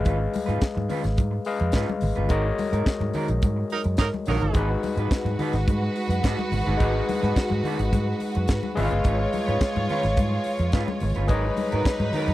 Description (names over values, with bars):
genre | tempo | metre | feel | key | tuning
disco | 107 BPM | 4/4 | straight | G# dorian | A4 = 440 Hz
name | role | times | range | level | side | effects
electric guitar through a small old amp | accompaniment | 0.0-12.3 s | C#4 to B4 | -32 LUFS | right 2 dB | none
overdriven tine electric piano | accompaniment | 0.0-12.3 s | G#3 to E#5 | -28 LUFS | left 4 dB | none
vintage muted fingered electric bass | bass | 0.1-12.3 s | G1 to G#2 | -25 LUFS | equal | none
tight funk drum kit | drums | 0.1-12.3 s | hi-hat, kick drum, snare drum | -23 LUFS | equal | none
congas | percussion | 0.1-12.3 s | none | -33 LUFS | left 3 dB | none
warm horn section | stabs | 3.7-4.6 s | F#3 to A#4 | -27 LUFS | right 5 dB | none
warm studio string section | second line | 4.5-12.3 s | F#3 to C#5 | -28 LUFS | right 2 dB | none
room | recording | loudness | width
little or no reverb | dry, close 1970s-style studio recording | -22 LUFS | side -15 dB against mid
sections
0.0-12.3 A section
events
band accent 2.3-4.6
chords
0.0 C#7; 2.3 F#69; 4.6 G#m7; 8.8 C#7; 11.3 Bmaj7/G#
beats
| 0.06 0.62 1.18 1.75 | 2.31 2.87 3.43 3.99 | 4.55 5.12 5.68 6.24 | 6.80 7.37 7.93 8.49 | 9.05 9.61 10.18 10.74 | 11.30 11.86